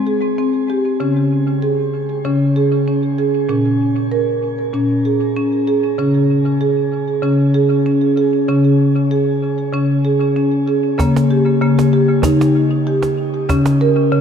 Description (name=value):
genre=world meditative, meditative tuned percussion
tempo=96 BPM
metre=4/4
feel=swing 54% on 16ths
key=unclear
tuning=A4 = 442 Hz
part: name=marimba with soft mallets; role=arpeggios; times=0.0-14.2 s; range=Bb2 to Bb4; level=-13 LUFS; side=equal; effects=tape echo, shimmer reverb
part: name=cajon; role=percussion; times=11.0-13.9 s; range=none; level=-22 LUFS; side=right 1 dB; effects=none
room=wet scoring stage reverb, RT60 2.0 s, studio reverb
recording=none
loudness=-13 LUFS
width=side -7 dB against mid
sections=0.0-11.0 A section; 11.0-14.2 B section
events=none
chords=0.0 Ab; 1.0 Db5; 3.5 Bbm; 6.0 Db5; 11.0 Eb/Db; 13.5 Bbm/Db